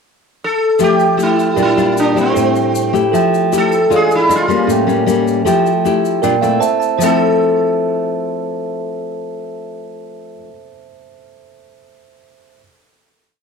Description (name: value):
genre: bossa nova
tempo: 155 BPM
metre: 4/4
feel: straight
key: F major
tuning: A4 = 440 Hz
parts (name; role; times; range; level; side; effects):
- sitar; melody; 0.4-4.7, 7.0-10.4 s; C4 to A4; -16 LUFS; equal; none
- bell-like tine electric piano; accompaniment; 0.8-12.6 s; C#4 to A5; -18 LUFS; right 12 dB; none
- nylon-string guitar; accompaniment; 0.8-10.5 s; A2 to G4; -17 LUFS; left 8 dB; none
- tube shaker; percussion; 0.8-7.1 s; none; -32 LUFS; left 11 dB; none
room: wet spring reverb, RT60 1.1 s, small room ambience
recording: 1960s-style stereo with parts hard left and right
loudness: -12 LUFS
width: side -5 dB against mid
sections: 0.0-0.8 pickup bar; 0.8-7.0 A section; 7.0-10.1 final chord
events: tine electric piano fill 6.2-7.0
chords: 0.0 N.C.; 0.8 Fmaj9; 1.6 Bb6; 2.3 Am7; 3.1 Fmaj9; 3.9 E7b9; 4.7 A7b9; 5.5 Fmaj9; 6.2 Bb6; 6.6 Am; 7.0 Fmaj7